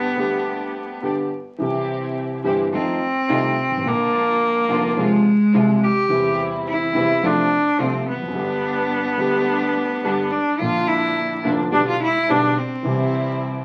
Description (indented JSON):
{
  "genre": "tango",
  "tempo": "107 BPM",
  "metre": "4/4",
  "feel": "rubato",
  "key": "C major",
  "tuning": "A4 = 442 Hz",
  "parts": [
    { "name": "clear cello", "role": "second line", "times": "0.0-13.6 s", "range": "Ab3 to G4", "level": "-22 LUFS", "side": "equal", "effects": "none" },
    { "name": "dark concert grand piano", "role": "accompaniment", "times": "0.0-13.6 s", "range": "F1 to G4", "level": "-26 LUFS", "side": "equal", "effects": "none" },
    { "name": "muted studio string section", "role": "stabs", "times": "0.0-13.6 s", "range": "E2 to G4", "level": "-30 LUFS", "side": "equal", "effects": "none" }
  ],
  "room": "wet club reverb, RT60 0.7 s",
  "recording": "very old 78 rpm record, vinyl crackle",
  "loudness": "-20 LUFS",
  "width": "mono",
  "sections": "0.0-1.6 A section; 1.6-13.6 A section",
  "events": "cello solo 0.0-1.6, 1.6-13.6",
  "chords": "0.0 G; 1.6 C; 2.7 F7; 3.9 Bb; 5.0 Fm; 6.1 C/E; 7.2 F; 8.4 G; 10.6 Bb; 11.7 G/B; 12.9 C"
}